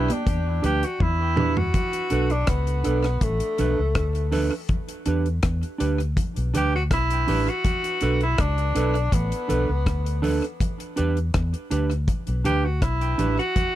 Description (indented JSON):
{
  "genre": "roots reggae",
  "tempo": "81 BPM",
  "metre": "4/4",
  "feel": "straight",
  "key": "unclear",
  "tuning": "A4 = 440 Hz",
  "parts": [
    { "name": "warm tenor saxophone", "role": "melody", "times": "0.0-13.8 s", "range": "A3 to G4", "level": "-26 LUFS", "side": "left 1 dB", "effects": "tape echo" },
    { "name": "mellow electric guitar", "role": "accompaniment", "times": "0.0-13.4 s", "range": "D4 to B4", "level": "-28 LUFS", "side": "right 5 dB", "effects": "tape echo" },
    { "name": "vintage muted fingered electric bass", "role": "bass", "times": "0.0-13.4 s", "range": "A1 to E2", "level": "-24 LUFS", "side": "left 1 dB", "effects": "none" },
    { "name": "deep reggae drum kit", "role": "drums", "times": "0.1-13.7 s", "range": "hi-hat, kick drum, rim click, toms", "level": "-26 LUFS", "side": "equal", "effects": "tape echo" },
    { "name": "congas", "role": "percussion", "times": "0.1-13.7 s", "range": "none", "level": "-34 LUFS", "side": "right 2 dB", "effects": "none" }
  ],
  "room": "light reverb",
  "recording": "none",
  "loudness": "-21 LUFS",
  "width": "side -13 dB against mid",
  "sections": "0.0-1.7 A section; 1.7-13.8 B section",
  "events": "drum fill 1.0-1.7",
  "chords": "0.0 Em7; 1.7 Bm7; 4.7 Em7; 7.7 Bm7; 10.6 Em7"
}